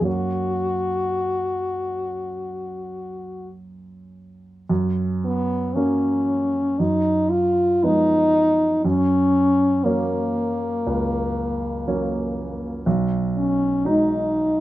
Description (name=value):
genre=classical, romantic duo for French horn and grand piano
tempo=50-61 BPM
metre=4/4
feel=rubato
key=F# major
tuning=A4 = 440 Hz
part: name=warm French horn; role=melody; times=0.0-14.6 s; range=A#3 to F#4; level=-21 LUFS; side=left 1 dB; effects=none
part: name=dark grand piano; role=accompaniment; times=0.0-14.6 s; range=B1 to D#4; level=-24 LUFS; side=right 2 dB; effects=none
room=moderate studio reverb, RT60 0.5 s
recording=none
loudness=-19 LUFS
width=side -15 dB against mid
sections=0.0-4.7 A section; 4.7-14.6 B section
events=none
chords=0.1 F#; 6.8 Fdim/F#; 8.8 F#; 12.9 G#m7/B